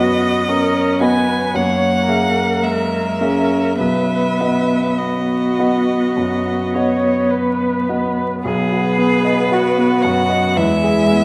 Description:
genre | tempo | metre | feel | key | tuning
classical, slow romantic movement for piano quartet | 50-58 BPM | 4/4 | rubato | B major | A4 = 440 Hz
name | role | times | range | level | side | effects
clear violin | melody | 0.0-11.2 s | B4 to G#5 | -24 LUFS | equal | none
clear cello | second line | 0.0-11.2 s | G#3 to G#4 | -22 LUFS | equal | none
clear baby grand piano | accompaniment | 0.0-11.2 s | B1 to E5 | -22 LUFS | equal | none
rich viola | accompaniment | 0.0-11.2 s | G#3 to C#5 | -23 LUFS | equal | none
room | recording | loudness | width
moderate scoring stage reverb, RT60 1.6 s | dark, warm production, vinyl crackle | -17 LUFS | mono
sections
0.0-8.5 A section; 8.5-11.2 A section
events
none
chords
0.0 B/F#; 1.5 F#9; 3.8 B; 10.6 E

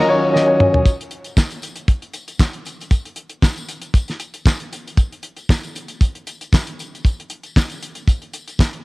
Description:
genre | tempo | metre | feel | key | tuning
disco | 116 BPM | 4/4 | swing 56% on 16ths | Eb minor | A4 = 440 Hz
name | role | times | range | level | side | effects
warm grand piano | accompaniment | 0.0-0.9 s | Gb3 to Eb5 | -16 LUFS | left 1 dB | cassette tape
tonewheel organ | sustained chords | 0.0-0.8 s | Eb3 to Db4 | -19 LUFS | equal | chorus vibrato, lush chorus, cassette tape
damped 70s drum kit | drums | 0.4-8.8 s | handclaps, hi-hat, kick drum, snare drum, toms | -17 LUFS | equal | none
tambourine | percussion | 0.9-8.7 s | none | -36 LUFS | left 3 dB | none
room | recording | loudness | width
studio ambience | home recording on cassette | -17 LUFS | side -24 dB against mid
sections
0.9-8.8 A section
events
band accent 0.0-0.9; drum fill 0.3-0.9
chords
0.0 Ebm7; 0.9 N.C.

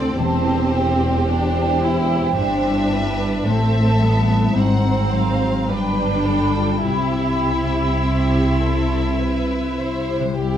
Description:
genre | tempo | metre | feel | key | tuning
classical, slow romantic movement for symphony orchestra | 50-56 BPM | 3/4 | rubato | C major | A4 = 444 Hz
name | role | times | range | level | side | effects
rich studio violin section | melody | 0.0-10.1 s | C5 to G5 | -30 LUFS | left 1 dB | none
mellow hollow small flute group | second line | 0.0-9.2 s | G5 to C6 | -26 LUFS | right 2 dB | none
warm studio violin section | second line | 0.0-10.6 s | G4 to C5 | -28 LUFS | equal | none
rich studio viola section | accompaniment | 0.0-10.6 s | G3 to E4 | -24 LUFS | equal | none
concert harp | arpeggios | 0.0-10.6 s | G2 to G4 | -25 LUFS | left 7 dB | none
rich studio cello section | bass | 0.0-10.6 s | C2 to C3 | -22 LUFS | right 1 dB | none
rich studio double bass section | bass | 0.0-10.6 s | E1 to D2 | -24 LUFS | right 2 dB | none
room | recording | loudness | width
moderate scoring stage reverb, RT60 1.6 s | close, detailed microphones | -16 LUFS | side -10 dB against mid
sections
0.0-10.4 A section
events
none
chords
0.2 C/E; 3.5 Am7; 4.6 Ab7; 5.7 G7; 6.9 C

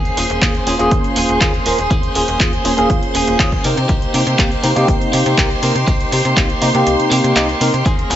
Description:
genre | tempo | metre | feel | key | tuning
filtered disco house | 121 BPM | 4/4 | straight | unclear | A4 = 439 Hz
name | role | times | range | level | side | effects
string machine, full ensemble | sustained chords | 0.0-8.2 s | Bb4 to C6 | -22 LUFS | equal | ensemble chorus, sidechain pumping
clean electric guitar | riff | 0.0-8.2 s | Bb3 to Ab4 | -21 LUFS | equal | tremolo, sidechain pumping
slap-like FM bass | bass | 0.0-8.2 s | Eb1 to C3 | -21 LUFS | equal | tube saturation, sidechain pumping
punchy analog drum machine | drums | 0.1-8.2 s | handclaps, hi-hat | -20 LUFS | right 1 dB | sidechain pumping on hats
tine electric piano | accompaniment | 0.2-8.2 s | Bb3 to Bb4 | -18 LUFS | equal | phaser, sidechain pumping
electronic kick drum | drums | 0.4-8.0 s | none | -18 LUFS | equal | none
egg shaker and congas | percussion | 7.9-8.2 s | none | -24 LUFS | left 3 dB | sidechain pumping on perc
room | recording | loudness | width
light reverb, digital ambience | nothing above 7.8 kHz | -12 LUFS | side -11 dB against mid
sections
0.0-8.2 A section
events
kick drops out 6.9-7.9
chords
0.0 Eb7sus4; 3.6 Cm7

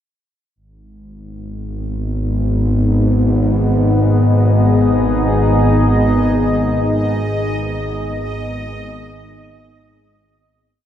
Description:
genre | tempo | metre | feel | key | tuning
dark ambient drone | free time | none | none | G# minor | A4 = 440 Hz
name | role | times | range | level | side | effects
deep dark ambient pad | sustained chords | 2.0-10.8 s | B3 to D#5 | -18 LUFS | left 1 dB | chorus, built-in reverb
bowed-like drone | drone | 1.4-10.9 s | G#1 to G#2 | -16 LUFS | equal | built-in reverb
bubbling stepped-filter texture | texture | 6.0-10.8 s | D#5 | -28 LUFS | right 2 dB | chorus, built-in reverb
room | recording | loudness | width
moderate huge ambient reverb, RT60 8.1 s | dark, warm production | -13 LUFS | side -10 dB against mid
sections
0.6-10.8 A section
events
fade-out 5.7-10.8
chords
0.6 G#m

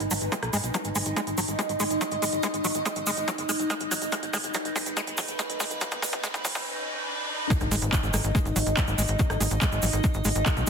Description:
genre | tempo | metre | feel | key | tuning
psychedelic trance | 142 BPM | 4/4 | straight | G# minor | A4 = 439 Hz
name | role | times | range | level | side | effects
evolving wavetable pad | sustained chords | 0.0-10.7 s | D#4 to D#5 | -31 LUFS | equal | chorus, built-in reverb, phaser, sidechain pumping
tight sequencer bass | bass | 0.0-10.7 s | G#1 to G#2 | -30 LUFS | equal | none
techno drum kit | drums | 0.0-10.7 s | handclaps, hi-hat, rim click | -32 LUFS | right 2 dB | high-pass filter on hats, soft clipping on snare, high-pass filter on snare, high-pass filter on room
tube shaker | percussion | 0.0-10.7 s | none | -35 LUFS | right 2 dB | none
screaming distorted acid line | riff | 0.1-10.7 s | F#3 to G#3 | -32 LUFS | equal | distortion, chorus, auto-pan, sidechain pumping, digital delay
electronic kick drum | drums | 0.3-10.5 s | none | -28 LUFS | equal | high-pass filter on kick, high-pass filter on room
riser and sub drop | sound effects | 2.9-9.2 s | none | -37 LUFS | left 1 dB | none
room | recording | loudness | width
light reverb, digital ambience | dense, heavily limited modern master, high-pass filter | -24 LUFS | side -6 dB against mid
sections
0.0-7.5 A section; 7.5-10.7 B section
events
build-up 0.0-7.5; filter sweep on acid bass 0.0-7.5; filter sweep on ambient pad 0.0-7.5; drum fill 0.7-6.7; riser 2.9-7.5; drop 7.5-10.7; impact 7.5-9.2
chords
0.0 G#5

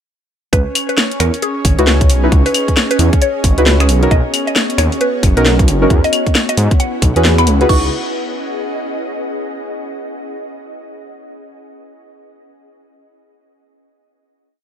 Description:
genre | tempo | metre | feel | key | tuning
UK garage, two-step garage | 134 BPM | 4/4 | swing 62% on 16ths | C# minor | A4 = 441 Hz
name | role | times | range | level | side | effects
mallet-like synth pluck | melody | 0.5-7.9 s | F#4 to C#6 | -20 LUFS | equal | wide subtle chorus, ping-pong delay
warm analog pad | sustained chords | 0.5-7.7 s | C#4 to C#5 | -25 LUFS | right 2 dB | chorus, sidechain pumping
dark detuned saw bass | bass | 0.5-7.9 s | F#1 to G#2 | -14 LUFS | equal | none
electronic kick drum | drums | 0.5-7.8 s | none | -13 LUFS | equal | none
garage drum kit | drums | 0.5-7.8 s | claves, crash cymbal, finger snaps, hi-hat, snare drum | -17 LUFS | left 1 dB | none
ethereal airy pad | texture | 0.9-9.4 s | B3 to F#5 | -23 LUFS | equal | ensemble chorus, built-in reverb, sidechain pumping
deep mellow chord stab | stabs | 1.8-7.9 s | C#4 to B4 | -18 LUFS | equal | chorus, vintage 12-bit sampler grit, digital delay
room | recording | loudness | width
light reverb | none | -11 LUFS | side -9 dB against mid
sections
0.5-7.7 drop; 7.7-9.5 final chord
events
drop 0.5-7.7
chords
0.5 C#m11; 3.9 Bmaj7; 5.9 E69; 7.7 C#m11

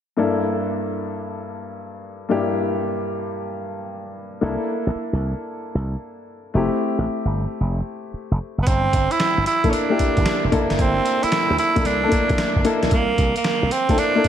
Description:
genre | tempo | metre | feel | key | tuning
R&B, new jack swing | 113 BPM | 4/4 | swing 67% on 16ths | G dorian | A4 = 441 Hz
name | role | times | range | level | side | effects
dark baby grand piano | accompaniment | 0.2-14.3 s | G2 to A4 | -23 LUFS | left 2 dB | slapback echo
slap bass with an envelope filter | bass | 4.4-14.3 s | E1 to D2 | -23 LUFS | equal | none
raspy tenor saxophone | melody | 8.6-14.3 s | Bb3 to E4 | -20 LUFS | right 3 dB | none
boom bap sampler-style drum kit | drums | 8.7-14.3 s | hi-hat, kick drum, snare drum | -23 LUFS | equal | none
room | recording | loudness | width
moderate lush hall reverb, RT60 2.0 s | big arena sound | -19 LUFS | side -9 dB against mid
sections
0.2-8.7 A section; 8.7-14.3 B section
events
none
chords
0.2 Gm69; 4.4 C13; 6.5 Fmaj9; 8.7 Gm69; 12.9 C13

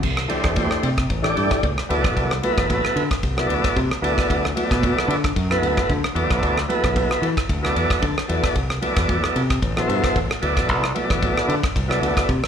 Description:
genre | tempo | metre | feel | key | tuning
electric jazz fusion | 113 BPM | 4/4 | swing 54% on 16ths | C lydian | A4 = 438 Hz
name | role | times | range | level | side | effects
modern bright fingered electric bass | bass | 0.0-12.4 s | A1 to E3 | -24 LUFS | equal | none
damped 70s drum kit | drums | 0.0-12.5 s | crash cymbal, kick drum, ride cymbal, rim click | -23 LUFS | equal | none
congas | percussion | 0.0-12.4 s | none | -32 LUFS | right 3 dB | slapback echo
tonewheel organ | accompaniment | 0.3-12.3 s | B2 to A5 | -22 LUFS | equal | slow rotary speaker, slapback echo
room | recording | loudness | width
light reverb, studio ambience | live gig heard through the venue's PA, club reverb | -18 LUFS | side -8 dB against mid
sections
0.0-12.5 A section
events
tonewheel organ fill 7.8-8.6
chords
0.0 C69; 1.9 D7; 4.0 D69; 6.2 E7sus4; 8.6 C69; 10.4 D7

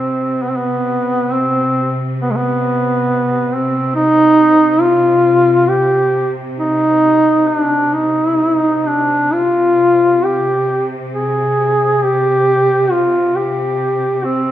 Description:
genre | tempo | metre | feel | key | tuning
caucasian folk, Caucasian lament | 67 BPM | 3/4 | uneven beats, rubato | C harmonic minor | A4 = 440 Hz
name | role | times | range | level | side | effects
mellow duduk | melody | 0.0-14.5 s | Ab3 to Ab4 | -12 LUFS | equal | none
rich studio string section | drone | 0.0-14.5 s | C3 | -23 LUFS | equal | none
room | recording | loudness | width
moderate scoring stage reverb, RT60 1.6 s | minimal, uncompressed stereo recording | -12 LUFS | side -12 dB against mid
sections
0.0-14.5 A section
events
none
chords
none

